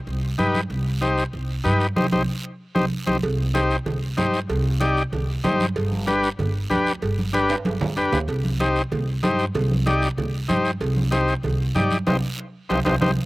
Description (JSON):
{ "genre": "latin, cumbia", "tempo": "190 BPM", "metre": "4/4", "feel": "straight", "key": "C harmonic minor", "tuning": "A4 = 440 Hz", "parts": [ { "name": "upright bass", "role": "bass", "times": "0.1-13.1 s", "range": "G1 to G2", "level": "-24 LUFS", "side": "equal", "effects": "none" }, { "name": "congas", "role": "percussion", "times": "0.1-13.1 s", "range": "none", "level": "-27 LUFS", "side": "right 1 dB", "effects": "none" }, { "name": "guiro", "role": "percussion", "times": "0.1-13.1 s", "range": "none", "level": "-36 LUFS", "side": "right 3 dB", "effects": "slapback echo" }, { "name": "combo organ", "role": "accompaniment", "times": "0.4-13.1 s", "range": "D4 to D5", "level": "-23 LUFS", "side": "left 2 dB", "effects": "none" }, { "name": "cowbell and timbales", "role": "percussion", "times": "3.2-13.1 s", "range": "none", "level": "-31 LUFS", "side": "right 4 dB", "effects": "slapback echo" } ], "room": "little or no reverb", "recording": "recorded outdoors, with no room sound", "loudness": "-20 LUFS", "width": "side -19 dB against mid", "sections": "0.0-3.2 A section; 3.2-13.3 A section", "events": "band accent 2.0-3.2, 12.1-13.3; drum fill 7.5-8.3, 12.9-13.3", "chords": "0.0 Cm; 5.8 G; 8.3 Cm" }